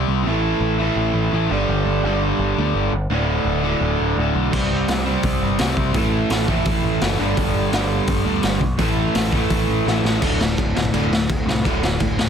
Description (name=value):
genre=punk rock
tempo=169 BPM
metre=4/4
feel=straight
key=unclear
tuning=A4 = 440 Hz
part: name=distorted electric guitar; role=riff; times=0.0-12.3 s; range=D2 to C4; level=-24 LUFS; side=left 11 dB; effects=distortion
part: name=overdriven electric guitar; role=riff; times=0.0-12.3 s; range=D2 to C4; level=-24 LUFS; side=right 11 dB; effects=none
part: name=growling picked electric bass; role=bass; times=0.0-12.3 s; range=D1 to D2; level=-23 LUFS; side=equal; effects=overdrive
part: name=cranked stack guitar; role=riff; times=4.5-12.3 s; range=D2 to C4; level=-25 LUFS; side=equal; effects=overdrive
part: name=raw garage drum kit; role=drums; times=4.5-12.3 s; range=crash cymbal, hi-hat, kick drum, snare drum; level=-22 LUFS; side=equal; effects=none
room=moderate small room reverb, RT60 0.5 s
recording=dense, heavily limited modern master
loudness=-17 LUFS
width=side -7 dB against mid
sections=0.0-10.2 A section; 10.2-12.3 B section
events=half time 0.0-10.2; drum fill 9.9-10.2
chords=0.3 A5; 1.5 G5; 3.1 D5; 4.5 C5; 5.9 A5; 7.2 G5; 8.8 A5; 10.2 D5